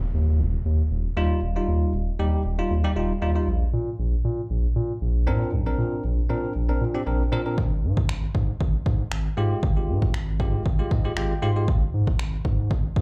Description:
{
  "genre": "dance-pop",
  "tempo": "117 BPM",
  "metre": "4/4",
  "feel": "straight",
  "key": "unclear",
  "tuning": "A4 = 439 Hz",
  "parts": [
    { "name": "saturated sub bass", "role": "bass", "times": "0.0-13.0 s", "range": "Eb1 to Bb2", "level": "-26 LUFS", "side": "equal", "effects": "sidechain pumping" },
    { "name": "impact", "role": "sound effects", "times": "0.0-1.4 s", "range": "none", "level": "-39 LUFS", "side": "equal", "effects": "none" },
    { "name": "bell-like tine electric piano", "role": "accompaniment", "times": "1.2-11.7 s", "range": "G3 to C6", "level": "-30 LUFS", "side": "equal", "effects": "sidechain pumping, plate reverb, slapback echo" },
    { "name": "punchy analog drum machine", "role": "drums", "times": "7.6-13.0 s", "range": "finger snaps, kick drum", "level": "-27 LUFS", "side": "equal", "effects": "overdrive" }
  ],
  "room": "little or no reverb",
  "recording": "live gig heard through the venue's PA, club reverb",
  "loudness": "-24 LUFS",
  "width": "mono",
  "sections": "0.0-13.0 A section",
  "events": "impact 0.0-1.4; tine electric piano fill 10.7-11.7",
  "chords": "0.0 Ebadd9; 3.5 Bbadd9; 7.6 Fmadd9/Ab; 11.7 N.C.",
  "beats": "0.40 0.91 | 1.43 1.94 2.45 2.96 | 3.48 3.99 4.50 5.01 | 5.53 6.04 6.55 7.07 | 7.58 8.09 8.61 9.12 | 9.63 10.14 10.66 11.17 | 11.68 12.19 12.71"
}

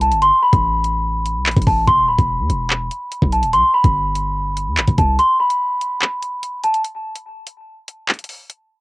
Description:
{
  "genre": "hip hop, drill",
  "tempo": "145 BPM",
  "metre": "4/4",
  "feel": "half-time",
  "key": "unclear",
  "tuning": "A4 = 440 Hz",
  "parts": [
    { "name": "large celesta", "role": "melody", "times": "0.0-6.8 s", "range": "A5 to C6", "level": "-16 LUFS", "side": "equal", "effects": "cassette tape" },
    { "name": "hard-hitting 808-style bass", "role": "bass", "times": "0.0-5.2 s", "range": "D1 to E2", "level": "-20 LUFS", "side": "equal", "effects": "none" },
    { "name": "drill drum kit", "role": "drums", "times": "0.0-8.6 s", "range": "handclaps, hi-hat, kick drum", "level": "-19 LUFS", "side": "equal", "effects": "overdrive, cassette tape" }
  ],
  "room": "little or no reverb",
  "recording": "home recording on cassette",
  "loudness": "-15 LUFS",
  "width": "side -24 dB against mid",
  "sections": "0.0-8.8 A section",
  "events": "break 5.2-8.8; kick muted 5.2-6.0",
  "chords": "0.0 Am; 1.9 Em; 5.2 N.C.",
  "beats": "| 0.22 0.64 1.05 1.46 | 1.88 2.29 2.71 3.12 | 3.53 3.95 4.36 4.77 | 5.19 5.60 6.01 6.43 | 6.84 7.26 7.67 8.08 | 8.50"
}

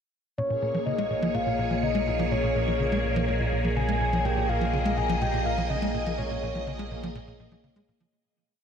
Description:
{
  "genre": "ambient, sequencer-driven space music",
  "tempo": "124 BPM",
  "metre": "4/4",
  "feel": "straight",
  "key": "Bb minor",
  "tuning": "A4 = 440 Hz",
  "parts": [
    { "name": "soft octave-layered synth lead", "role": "melody", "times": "0.4-6.7 s", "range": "Db5 to Ab5", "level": "-30 LUFS", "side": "left 1 dB", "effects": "chorus, tape echo" },
    { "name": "phased string machine", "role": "sustained chords", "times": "0.4-8.1 s", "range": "Bb2 to Eb5", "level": "-29 LUFS", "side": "equal", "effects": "ensemble chorus, phaser" },
    { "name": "tight sequencer bass", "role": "riff", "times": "0.4-8.1 s", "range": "Bb2 to Ab3", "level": "-31 LUFS", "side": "equal", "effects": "analog chorus, tape echo" },
    { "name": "round analog bass", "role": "bass", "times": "0.4-8.1 s", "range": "Bb1", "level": "-32 LUFS", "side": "equal", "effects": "none" }
  ],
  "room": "moderate huge ambient reverb, RT60 8.1 s",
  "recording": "none",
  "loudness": "-24 LUFS",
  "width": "side -7 dB against mid",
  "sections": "0.4-8.1 A section",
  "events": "fade-out 5.5-8.1",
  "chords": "0.4 Bbm7",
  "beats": "| 0.38 0.86 1.34 1.83 | 2.31 2.80 3.28 3.77 | 4.25 4.73 5.22 5.70 | 6.18 6.67 7.15 7.64"
}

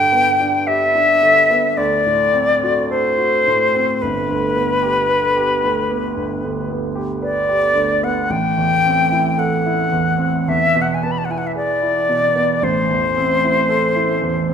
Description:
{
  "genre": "classical, romantic duo for flute and grand piano",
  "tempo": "55 BPM",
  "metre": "4/4",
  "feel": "rubato",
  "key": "G major",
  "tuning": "A4 = 439 Hz",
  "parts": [
    { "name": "bright concert flute", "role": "melody", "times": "0.0-14.5 s", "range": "B4 to B5", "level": "-16 LUFS", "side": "left 2 dB", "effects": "none" },
    { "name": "clear grand piano", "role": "accompaniment", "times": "0.0-14.5 s", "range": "G1 to B4", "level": "-20 LUFS", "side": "right 3 dB", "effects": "none" }
  ],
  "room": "wet recital hall reverb, RT60 1.2 s",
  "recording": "none",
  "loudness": "-14 LUFS",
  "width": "side -7 dB against mid",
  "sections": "0.0-14.5 A section",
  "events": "none",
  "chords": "0.0 G; 1.8 D7; 4.0 G; 8.3 Am; 10.5 E7; 12.6 Am",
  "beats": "0.66 1.77 2.90 | 4.01 5.09 6.18 7.23 | 8.30 9.38 10.48 11.56 | 12.63 13.70"
}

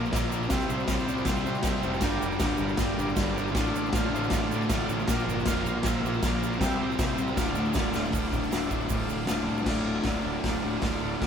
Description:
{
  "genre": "garage rock duo or trio",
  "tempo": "157 BPM",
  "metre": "4/4",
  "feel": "straight",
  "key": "D minor",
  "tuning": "A4 = 440 Hz",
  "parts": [
    { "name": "combo organ", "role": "sustained chords", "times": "0.0-11.3 s", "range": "F4 to F5", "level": "-37 LUFS", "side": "right 2 dB", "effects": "none" },
    { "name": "fuzz guitar", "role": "riff", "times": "0.0-11.3 s", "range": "D2 to C4", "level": "-28 LUFS", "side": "equal", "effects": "distortion" },
    { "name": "fuzz fingered electric bass", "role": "bass", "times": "0.0-11.3 s", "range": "D1 to C3", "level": "-35 LUFS", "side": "equal", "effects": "overdrive" },
    { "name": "raw garage drum kit", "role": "drums", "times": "0.1-11.3 s", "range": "crash cymbal, hi-hat, kick drum, snare drum", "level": "-29 LUFS", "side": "equal", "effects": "none" },
    { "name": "egg shaker", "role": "percussion", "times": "0.1-9.6 s", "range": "none", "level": "-44 LUFS", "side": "right 12 dB", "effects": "none" }
  ],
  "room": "light reverb",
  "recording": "band playing live in one room",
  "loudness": "-25 LUFS",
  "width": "side -7 dB against mid",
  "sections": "0.0-8.1 A section; 8.1-9.7 B section; 9.7-11.3 C section",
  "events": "drum fill 7.9",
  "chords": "0.0 Bb; 0.5 C; 2.0 Gm; 3.6 Dm/A; 5.1 Bb; 6.6 C; 7.4 Dm",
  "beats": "0.12 | 0.51 0.89 1.27 1.65 | 2.03 2.41 2.79 3.17 | 3.55 3.93 4.31 4.69 | 5.08 5.46 5.84 6.22 | 6.60 6.98 7.37 7.75 | 8.13 8.52 8.90 9.29 | 9.67 10.06 10.44 10.83 | 11.22"
}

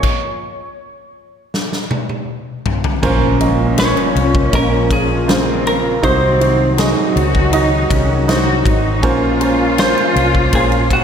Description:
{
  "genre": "pop ballad",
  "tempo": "80 BPM",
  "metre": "4/4",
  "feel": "straight",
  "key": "Bb minor",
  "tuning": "A4 = 443 Hz",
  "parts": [
    { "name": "semi-hollow electric guitar", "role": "melody", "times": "0.0-11.0 s", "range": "Gb4 to Db5", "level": "-19 LUFS", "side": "right 1 dB", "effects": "diffuse ambient delay" },
    { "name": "clear upright piano", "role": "accompaniment", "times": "0.0-11.0 s", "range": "Bb2 to Eb5", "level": "-18 LUFS", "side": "right 3 dB", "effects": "none" },
    { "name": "huge arena drum kit", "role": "drums", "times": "0.0-11.0 s", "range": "crash cymbal, kick drum, ride cymbal, snare drum, toms", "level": "-19 LUFS", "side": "left 1 dB", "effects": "none" },
    { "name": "rich studio cello section", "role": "second line", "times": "3.0-11.0 s", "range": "C4 to Gb4", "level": "-20 LUFS", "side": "left 1 dB", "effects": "none" },
    { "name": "sweeping resonant pad", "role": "sustained chords", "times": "3.0-11.0 s", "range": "Bb2 to F5", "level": "-22 LUFS", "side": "left 1 dB", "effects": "chorus" },
    { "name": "vintage muted fingered electric bass", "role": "bass", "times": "3.0-11.0 s", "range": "Ab1 to Db2", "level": "-18 LUFS", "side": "left 1 dB", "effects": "none" },
    { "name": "impact", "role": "sound effects", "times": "3.0-6.0 s", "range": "none", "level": "-25 LUFS", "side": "left 1 dB", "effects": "none" }
  ],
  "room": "wet lush hall reverb, RT60 2.0 s, small room ambience",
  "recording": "dreamy mix soaked in reverb",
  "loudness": "-12 LUFS",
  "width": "side -8 dB against mid",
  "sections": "0.0-3.0 A section; 3.0-11.0 B section",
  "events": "stop 0.0-3.0; drum fill 1.5-3.0; impact 3.0-6.0",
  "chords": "0.0 N.C.; 3.0 Bbmadd9; 6.0 Cdim; 9.0 Bbmadd9",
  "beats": "| 0.03 0.78 1.53 2.28 | 3.03 3.78 4.53 5.28 | 6.03 6.78 7.53 8.28 | 9.03 9.78 10.53"
}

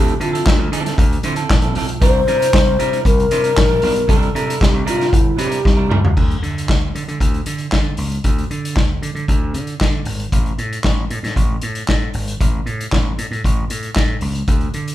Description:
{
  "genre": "disco",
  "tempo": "115 BPM",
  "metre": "4/4",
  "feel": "straight",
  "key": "unclear",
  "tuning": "A4 = 440 Hz",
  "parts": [
    { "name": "breathy mellow alto flute", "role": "melody", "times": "0.0-5.9 s", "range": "E4 to C5", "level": "-18 LUFS", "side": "left 2 dB", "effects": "none" },
    { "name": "semi-hollow electric guitar", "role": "accompaniment", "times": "0.0-6.1 s", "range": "F3 to C5", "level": "-24 LUFS", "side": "right 5 dB", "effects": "spring reverb" },
    { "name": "gritty slap bass", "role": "bass", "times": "0.0-14.9 s", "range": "G1 to D3", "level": "-22 LUFS", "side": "equal", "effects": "overdrive" },
    { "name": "vintage drum kit", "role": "drums", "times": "0.1-14.9 s", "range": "crash cymbal, handclaps, hi-hat, kick drum, snare drum, toms", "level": "-17 LUFS", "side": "equal", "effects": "none" }
  ],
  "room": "little or no reverb",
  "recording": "band playing live in one room, faint mains hum",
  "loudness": "-15 LUFS",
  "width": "side -13 dB against mid",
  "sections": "0.0-6.2 A section; 6.2-14.9 B section",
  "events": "drum fill 5.6-6.2",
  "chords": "0.0 Dm9; 2.0 C9; 6.2 N.C.",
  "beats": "0.46 0.97 1.49 | 2.01 2.53 3.05 3.57 | 4.09 4.61 5.12 5.64 | 6.16 6.68 7.20 7.72 | 8.24 8.76 9.28 9.80 | 10.32 10.84 11.36 11.88 | 12.40 12.92 13.44 13.96 | 14.48"
}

